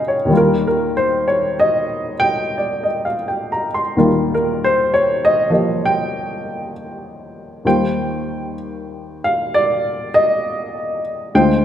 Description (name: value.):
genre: jazz ballad.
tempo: 65 BPM.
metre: 4/4.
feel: swing 68% on 8ths.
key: Eb major.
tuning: A4 = 440 Hz.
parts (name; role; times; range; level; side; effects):
warm baby grand piano; solo; 0.0-11.6 s; Db2 to C6; -16 LUFS; equal; none.
room: wet scoring stage reverb, RT60 1.8 s.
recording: none.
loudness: -15 LUFS.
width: side -10 dB against mid.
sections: 0.0-7.6 A section; 7.6-11.6 B section.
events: none.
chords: 0.3 Ebadd9; 7.6 Eb69.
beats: | 0.31 1.22 2.14 3.05 | 3.97 4.88 5.80 6.73 | 7.65 8.57 9.49 10.40 | 11.32.